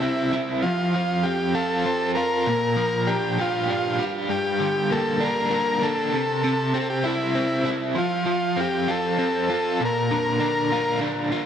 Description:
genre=rock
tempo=65 BPM (dotted quarters)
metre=6/8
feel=straight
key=unclear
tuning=A4 = 443 Hz
part: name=combo organ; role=melody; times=0.0-11.0 s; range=E4 to Bb4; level=-24 LUFS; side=left 1 dB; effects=analog delay
part: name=overdriven electric guitar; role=riff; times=0.0-11.5 s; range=F2 to G4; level=-24 LUFS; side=equal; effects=tremolo
room=wet lush hall reverb, RT60 1.6 s, digital ambience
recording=dreamy mix soaked in reverb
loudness=-21 LUFS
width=side -8 dB against mid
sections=0.0-11.5 A section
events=none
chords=0.0 C; 0.6 F; 2.5 Bb6; 4.3 Gm; 6.1 C; 8.0 F; 9.8 Bb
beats=| 0.62 1.55 | 2.47 3.39 | 4.31 5.23 | 6.15 7.06 | 7.98 8.89 | 9.81 10.72

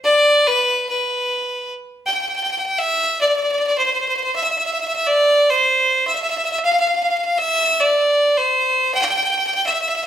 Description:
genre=calypso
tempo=104 BPM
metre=4/4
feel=straight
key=C major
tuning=A4 = 439 Hz
part: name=bright fiddle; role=solo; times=0.0-10.1 s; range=B4 to G5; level=-16 LUFS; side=equal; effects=none
room=moderate large studio reverb, RT60 1.1 s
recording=band playing live in one room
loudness=-16 LUFS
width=side -10 dB against mid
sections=0.0-2.3 A section; 2.3-10.1 B section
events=none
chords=none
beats=| 0.04 0.61 1.19 1.76 | 2.34 2.91 3.49 4.06 | 4.63 5.21 5.78 6.36 | 6.93 7.51 8.08 8.66 | 9.23 9.81

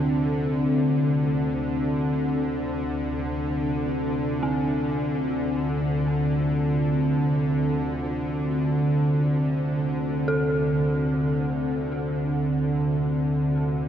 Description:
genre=ambient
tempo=free time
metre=none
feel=none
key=D minor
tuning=A4 = 440 Hz
part: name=dark analog pad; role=sustained chords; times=0.0-13.9 s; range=D3 to A4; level=-26 LUFS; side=equal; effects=chorus, phaser
part: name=bowed-like drone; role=drone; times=0.0-13.9 s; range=D2 to D3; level=-25 LUFS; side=equal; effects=built-in reverb
part: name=dark detuned synth bell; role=arpeggios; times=4.4-13.9 s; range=C4 to A4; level=-33 LUFS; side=equal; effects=chorus, tape echo
room=moderate huge ambient reverb, RT60 8.1 s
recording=cassette tape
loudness=-22 LUFS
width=side -9 dB against mid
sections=0.0-13.9 A section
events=none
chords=0.0 Dm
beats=free time

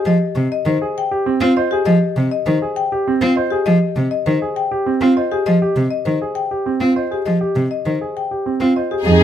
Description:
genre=classical, minimalist pattern music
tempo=100 BPM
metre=3/4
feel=straight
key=F minor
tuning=A4 = 440 Hz
part: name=marimba with medium hard mallets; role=melody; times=0.0-9.2 s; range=G4 to G5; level=-21 LUFS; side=left 8 dB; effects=none
part: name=clear baby grand piano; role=arpeggios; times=0.0-9.2 s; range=C4 to C5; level=-20 LUFS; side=right 4 dB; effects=none
part: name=rich cello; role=accompaniment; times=0.1-9.2 s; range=C3 to C4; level=-17 LUFS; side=right 1 dB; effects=none
part: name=mellow French horn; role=second line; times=9.1-9.2 s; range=Ab4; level=-15 LUFS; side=right 1 dB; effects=none
part: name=clear studio string section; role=sustained chords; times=9.1-9.2 s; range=Eb4 to Ab4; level=-17 LUFS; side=left 2 dB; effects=none
part: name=rich double bass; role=bass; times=9.1-9.2 s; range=F2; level=-15 LUFS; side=right 3 dB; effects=none
room=light reverb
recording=none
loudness=-15 LUFS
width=side -10 dB against mid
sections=0.0-9.1 A section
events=none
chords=0.0 Fm7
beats=| 0.07 0.67 1.26 | 1.86 2.46 3.06 | 3.67 4.26 4.87 | 5.46 6.07 6.67 | 7.26 7.87 8.46 | 9.06

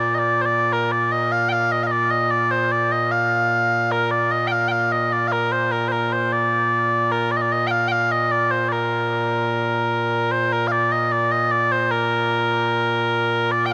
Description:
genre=scottish traditional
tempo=75 BPM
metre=2/4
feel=straight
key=Bb major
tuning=A4 = 440 Hz
part: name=mellow small bagpipes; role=solo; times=0.0-13.7 s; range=Bb2 to G5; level=-20 LUFS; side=equal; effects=none
room=moderate huge ambient reverb, RT60 7.9 s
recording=none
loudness=-20 LUFS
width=mono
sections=0.0-10.3 A section; 10.3-13.7 B section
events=none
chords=none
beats=| 0.71 1.51 | 2.31 3.12 | 3.92 4.71 | 5.51 6.32 | 7.12 7.92 | 8.71 9.52 | 10.31 11.12 | 11.91 12.71 | 13.52

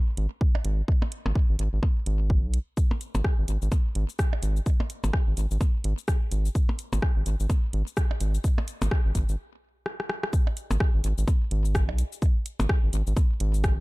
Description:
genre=minimal techno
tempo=127 BPM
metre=4/4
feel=swing 59% on 16ths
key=G# minor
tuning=A4 = 440 Hz
part: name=round analog bass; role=bass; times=0.2-13.8 s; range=G#1 to B1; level=-25 LUFS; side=equal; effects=sidechain pumping
part: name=house drum kit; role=drums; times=0.2-13.8 s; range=hi-hat, rim click, shaker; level=-34 LUFS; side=left 1 dB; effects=none
part: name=electronic kick drum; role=drums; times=0.4-13.8 s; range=none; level=-23 LUFS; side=equal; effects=none
part: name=percussion blips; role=percussion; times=0.5-13.3 s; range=none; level=-34 LUFS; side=equal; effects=digital delay
room=little or no reverb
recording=dark, warm production, faint mains hum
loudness=-23 LUFS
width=side -22 dB against mid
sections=0.0-10.3 A section; 10.3-13.8 B section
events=stop 9.4-10.3; drum fill 9.9-10.3; drop 10.3-13.8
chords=none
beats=0.41 | 0.88 1.35 1.83 2.30 | 2.77 3.25 3.72 4.19 | 4.66 5.13 5.61 6.08 | 6.55 7.02 7.50 7.97 | 8.44 8.91 9.39 9.86 | 10.33 10.80 11.28 11.75 | 12.22 12.69 13.17 13.64

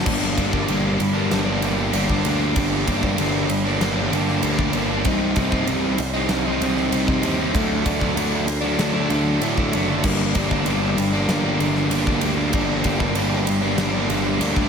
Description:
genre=post-rock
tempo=96 BPM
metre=4/4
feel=straight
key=G minor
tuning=A4 = 440 Hz
part: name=overdriven electric guitar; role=riff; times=0.0-14.7 s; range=G2 to Eb4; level=-21 LUFS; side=equal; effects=slapback echo
part: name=fuzz picked electric bass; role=bass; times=0.0-14.7 s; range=F#1 to A2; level=-25 LUFS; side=equal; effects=overdrive
part: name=huge arena drum kit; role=drums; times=0.1-14.7 s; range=crash cymbal, kick drum, ride cymbal, snare drum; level=-25 LUFS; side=equal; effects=none
room=moderate lush hall reverb, RT60 1.8 s, studio reverb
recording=big arena sound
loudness=-18 LUFS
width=side -6 dB against mid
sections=0.1-14.7 A section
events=none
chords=0.1 Gm; 5.0 Cm; 7.5 D; 10.0 Gm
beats=| 0.06 0.68 1.31 1.93 | 2.56 3.18 3.80 4.43 | 5.05 5.67 6.30 6.92 | 7.54 8.17 8.79 9.42 | 10.04 10.66 11.29 11.91 | 12.54 13.16 13.79 14.41

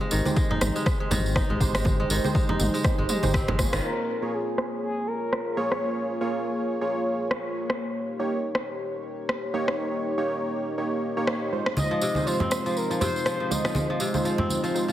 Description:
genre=afro house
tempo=121 BPM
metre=4/4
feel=swing 57% on 16ths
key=Bb dorian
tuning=A4 = 439 Hz
part: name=warm analog pad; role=sustained chords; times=0.0-14.9 s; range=Ab3 to Db5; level=-33 LUFS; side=left 2 dB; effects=chorus, sidechain pumping
part: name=kora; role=arpeggios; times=0.0-5.1, 11.9-14.9 s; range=C3 to Eb4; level=-31 LUFS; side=equal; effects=sidechain pumping, digital delay
part: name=round analog bass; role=bass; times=0.1-3.8 s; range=Ab1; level=-27 LUFS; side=equal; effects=sidechain pumping
part: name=tambourine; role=percussion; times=0.1-3.8, 11.8-14.9 s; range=none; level=-34 LUFS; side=right 2 dB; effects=none
part: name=warm analog keys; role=stabs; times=0.3-14.9 s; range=Ab3 to Db5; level=-29 LUFS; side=right 2 dB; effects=chorus, sidechain pumping, digital delay
part: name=congas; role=percussion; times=0.3-3.6, 11.8-14.6 s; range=none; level=-30 LUFS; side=right 1 dB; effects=none
part: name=electronic kick drum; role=drums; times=0.4-3.7 s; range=none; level=-26 LUFS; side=equal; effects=overdrive, small room reverb
part: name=deep house drum kit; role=drums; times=0.6-13.7 s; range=rim click, toms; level=-30 LUFS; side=equal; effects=overdrive, low-pass filter on snare, small room reverb, low-pass filter on toms
part: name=expressive synth lead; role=melody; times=3.8-6.1, 11.8-14.0 s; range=Ab4 to Eb5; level=-30 LUFS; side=left 1 dB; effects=chorus, digital delay
room=moderate plate reverb, RT60 1.9 s, digital ambience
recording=heavily compressed radio sound, multiband compression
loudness=-24 LUFS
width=side -12 dB against mid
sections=0.0-3.8 A section; 3.8-14.9 B section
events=drum fill 3.5-3.8; band accent 3.7; filter sweep on drum 3.8-14.9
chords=0.0 Abmaj7; 3.8 Bbm7; 7.8 Eb7; 11.8 Fm7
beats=0.36 0.86 1.36 | 1.85 2.35 2.85 3.34 | 3.84 4.33 4.83 5.32 | 5.82 6.32 6.81 7.31 | 7.80 8.30 8.79 9.29 | 9.79 10.28 10.78 11.27 | 11.77 12.27 12.76 13.26 | 13.75 14.25 14.75

